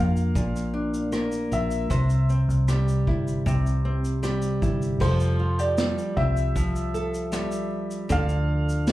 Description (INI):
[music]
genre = acoustic pop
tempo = 77 BPM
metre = 4/4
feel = straight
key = F major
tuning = A4 = 441 Hz
[part]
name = warm upright piano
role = melody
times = 0.0-8.9 s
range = C5 to F5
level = -31 LUFS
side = left 1 dB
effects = slapback echo
[part]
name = nylon-string guitar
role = accompaniment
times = 0.0-8.9 s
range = Bb2 to C5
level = -26 LUFS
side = equal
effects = none
[part]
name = vintage muted fingered electric bass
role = bass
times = 0.0-8.9 s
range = F1 to F2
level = -25 LUFS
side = equal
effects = none
[part]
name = vintage brush drum kit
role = drums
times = 0.2-8.9 s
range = crash cymbal, kick drum, rim click, shaker, snare drum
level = -29 LUFS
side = equal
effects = none
[sound]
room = moderate club reverb, RT60 0.9 s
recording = live gig heard through the venue's PA, club reverb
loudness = -22 LUFS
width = side -16 dB against mid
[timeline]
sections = 0.0-5.0 A section; 5.0-8.9 B section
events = none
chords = 0.0 Bb; 1.9 C; 5.0 Fadd9; 8.1 Dm